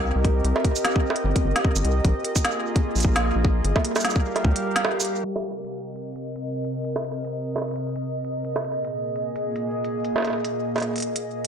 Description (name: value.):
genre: IDM.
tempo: 150 BPM.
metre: 4/4.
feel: swing 56% on 16ths.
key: C minor.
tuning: A4 = 440 Hz.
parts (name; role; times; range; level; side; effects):
warbly tape-like pad; sustained chords; 0.0-11.5 s; Bb2 to F5; -26 LUFS; equal; chorus, built-in reverb.
rubbery square bass; bass; 0.0-4.5 s; G1 to D2; -22 LUFS; equal; tube saturation.
electronic kick drum; drums; 0.2-4.5 s; none; -21 LUFS; equal; small room ambience.
organic electronic drum kit; drums; 0.2-11.5 s; bongos, cabasa, hi-hat, snare drum; -26 LUFS; right 2 dB; small room ambience, digital delay.
room: moderate plate reverb, RT60 1.1 s.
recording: blown-out, overdriven recording, overdrive, low-pass filter.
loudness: -22 LUFS.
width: side -8 dB against mid.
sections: 0.0-5.2 A section; 5.2-11.5 B section.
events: break 4.8-5.2, 11.2; filter sweep on ambient pad 5.2-11.5; filter sweep 5.2-11.5.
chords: 0.0 Cm7; 2.0 Bb7sus4; 3.6 Gm7; 5.2 Cm7; 8.4 Bb7sus4.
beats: 0.05 | 0.45 0.85 1.25 1.65 | 2.05 2.45 2.85 3.25 | 3.65 4.05 4.45 4.85 | 5.25 5.65 6.05 6.45 | 6.85 7.25 7.65 8.05 | 8.45 8.85 9.25 9.65 | 10.05 10.45 10.85 11.25.